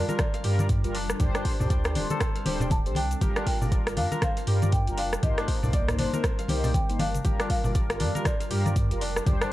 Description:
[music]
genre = afro house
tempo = 119 BPM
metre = 4/4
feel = swing 60% on 16ths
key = G minor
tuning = A4 = 441 Hz
[part]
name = marimba with soft mallets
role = melody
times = 0.0-8.7 s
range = C5 to A5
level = -34 LUFS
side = equal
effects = analog delay
[part]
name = ethereal airy pad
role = sustained chords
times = 0.0-9.5 s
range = Eb3 to Bb4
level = -39 LUFS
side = right 1 dB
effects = ensemble chorus, built-in reverb, tremolo, sidechain pumping
[part]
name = kora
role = arpeggios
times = 0.0-9.5 s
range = D4 to F5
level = -36 LUFS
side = left 2 dB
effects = sidechain pumping, analog delay
[part]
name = mellow synth brass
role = stabs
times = 0.0-9.5 s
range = G3 to C5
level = -33 LUFS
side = left 1 dB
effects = chorus, sidechain pumping, analog delay
[part]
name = warm sub bass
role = bass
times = 0.0-9.4 s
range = D1 to G2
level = -29 LUFS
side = equal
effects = sidechain pumping
[part]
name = afro-pop drum kit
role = drums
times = 0.1-9.5 s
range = hi-hat, rim click, toms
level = -31 LUFS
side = equal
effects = small room ambience
[part]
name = cabasa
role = percussion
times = 0.1-9.5 s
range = none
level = -46 LUFS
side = left 3 dB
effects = none
[part]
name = congas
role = percussion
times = 0.1-9.4 s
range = none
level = -31 LUFS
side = left 1 dB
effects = none
[part]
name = electronic kick drum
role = drums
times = 0.2-9.4 s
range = none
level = -26 LUFS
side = equal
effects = small room ambience
[sound]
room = studio reverb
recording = dry, gritty hardware recording, cassette tape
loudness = -23 LUFS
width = side -16 dB against mid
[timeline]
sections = 0.0-9.5 A section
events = drum fill 7.0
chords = 0.0 Gm7; 1.2 D7sus4; 3.2 Gm7; 5.2 Cm7; 7.2 Gm7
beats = 0.19 0.69 | 1.20 1.70 2.21 2.71 | 3.21 3.72 4.22 4.73 | 5.23 5.74 6.24 6.75 | 7.25 7.75 8.26 8.76 | 9.27

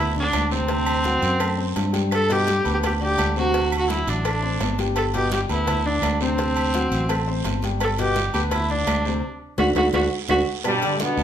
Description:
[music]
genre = latin, salsa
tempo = 169 BPM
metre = 4/4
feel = straight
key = G major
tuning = A4 = 439 Hz
[part]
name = warm viola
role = melody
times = 0.0-10.4 s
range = C4 to A4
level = -23 LUFS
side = right 1 dB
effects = none
[part]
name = warm concert grand piano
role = accompaniment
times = 0.0-11.2 s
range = B2 to C6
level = -28 LUFS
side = left 5 dB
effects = none
[part]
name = fingered electric bass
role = bass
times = 0.0-11.2 s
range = G1 to G2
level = -25 LUFS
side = equal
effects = none
[part]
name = congas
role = percussion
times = 0.2-11.2 s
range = none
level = -34 LUFS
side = left 1 dB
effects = none
[part]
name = claves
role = percussion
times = 0.3-10.8 s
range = none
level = -34 LUFS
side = right 9 dB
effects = none
[part]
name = cowbell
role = percussion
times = 0.3-11.2 s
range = none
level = -33 LUFS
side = left 6 dB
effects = none
[part]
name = guiro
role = percussion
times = 0.3-11.2 s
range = none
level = -35 LUFS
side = right 8 dB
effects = none
[part]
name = timbales and agogo bells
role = percussion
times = 0.3-11.2 s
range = none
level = -30 LUFS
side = right 3 dB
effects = none
[part]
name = bright trombone section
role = melody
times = 10.7-11.2 s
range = G2 to B3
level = -22 LUFS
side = equal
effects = none
[part]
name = dark trombone section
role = second line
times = 10.7-11.2 s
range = B2 to D3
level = -27 LUFS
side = right 2 dB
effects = none
[sound]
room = moderate large studio reverb, RT60 0.8 s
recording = band playing live in one room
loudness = -19 LUFS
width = side -9 dB against mid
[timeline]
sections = 0.0-10.6 A section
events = band accent 9.2-10.6; drum fill 9.6-10.6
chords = 0.0 G (rootless); 0.7 D7; 2.1 G; 3.5 D7; 5.0 G; 6.4 D7; 7.8 G; 9.2 D; 10.6 G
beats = 0.34 | 0.69 1.05 1.41 1.76 | 2.12 2.47 2.83 3.19 | 3.54 3.90 4.25 4.61 | 4.96 5.32 5.68 6.03 | 6.39 6.74 7.10 7.45 | 7.81 8.16 8.52 8.87 | 9.23 9.58 9.94 10.29 | 10.65 11.00

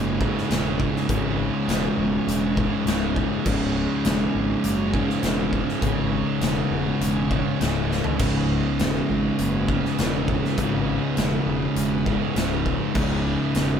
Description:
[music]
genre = stoner and doom metal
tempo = 101 BPM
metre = 4/4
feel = straight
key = C# minor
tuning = A4 = 441 Hz
[part]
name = bright tonewheel organ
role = sustained chords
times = 0.0-13.8 s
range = C#3 to C#4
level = -35 LUFS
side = equal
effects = slow rotary speaker, overdrive
[part]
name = thick fuzz guitar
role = riff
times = 0.0-13.8 s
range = C#2 to C#3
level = -26 LUFS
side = left 7 dB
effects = distortion
[part]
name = thick fuzz guitar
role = riff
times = 0.0-13.8 s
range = C#2 to C#3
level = -26 LUFS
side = right 8 dB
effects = distortion
[part]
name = fuzz picked electric bass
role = bass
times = 0.0-13.7 s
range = C#1 to G#1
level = -28 LUFS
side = equal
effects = overdrive
[part]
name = big rock drum kit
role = drums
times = 0.2-13.7 s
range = crash cymbal, hi-hat, kick drum, snare drum, splash cymbal, toms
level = -27 LUFS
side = left 1 dB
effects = none
[sound]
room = little or no reverb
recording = band playing live in one room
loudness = -20 LUFS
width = side -8 dB against mid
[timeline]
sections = 0.0-13.8 A section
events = drum fill 7.9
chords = 0.0 C#m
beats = 0.50 | 1.09 1.68 2.27 2.87 | 3.46 4.05 4.64 5.23 | 5.83 6.42 7.01 7.60 | 8.20 8.79 9.38 9.98 | 10.57 11.17 11.77 12.36 | 12.96 13.55

